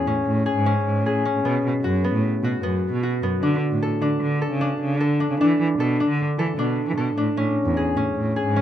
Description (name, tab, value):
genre	contemporary instrumental, chamber music in an uneven meter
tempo	152 BPM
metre	5/4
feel	straight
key	unclear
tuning	A4 = 440 Hz
part	concert harp	arpeggios	0.0-8.6 s	B3 to A4	-22 LUFS	left 2 dB	none
part	warm cello	bass	0.1-8.6 s	E2 to E3	-23 LUFS	right 2 dB	none
room	little or no reverb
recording	close, detailed microphones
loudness	-20 LUFS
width	side -10 dB against mid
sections	0.0-8.6 A section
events	none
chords	0.0 Amaj7; 1.5 B5; 3.4 D5; 5.4 E7sus4; 7.4 Amaj7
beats	0.27 0.66 1.06 | 1.45 1.85 2.24 2.64 3.03 | 3.43 3.82 4.22 4.61 5.01 | 5.40 5.80 6.19 6.59 6.98 | 7.38 7.77 8.17 8.56